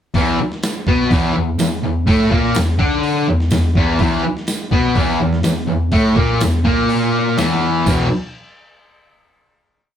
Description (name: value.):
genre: garage rock duo or trio.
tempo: 124 BPM.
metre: 4/4.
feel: straight.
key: unclear.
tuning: A4 = 440 Hz.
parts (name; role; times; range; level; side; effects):
fuzz guitar; riff; 0.1-8.1 s; E2 to D4; -15 LUFS; equal; distortion.
boom bap sampler-style drum kit; drums; 0.1-8.0 s; crash cymbal, hi-hat, kick drum, snare drum; -20 LUFS; right 1 dB; none.
tambourine; percussion; 0.6-8.1 s; none; -31 LUFS; right 7 dB; none.
room: moderate studio reverb, RT60 0.6 s.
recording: band playing live in one room.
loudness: -14 LUFS.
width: side -9 dB against mid.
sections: 0.1-7.9 riff; 7.9-9.8 final chord.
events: none.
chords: 0.1 E5.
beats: | 0.15 0.63 1.11 1.59 | 2.08 2.56 3.04 3.52 | 4.00 4.48 4.96 5.44 | 5.93 6.41 6.89 7.38 | 7.86.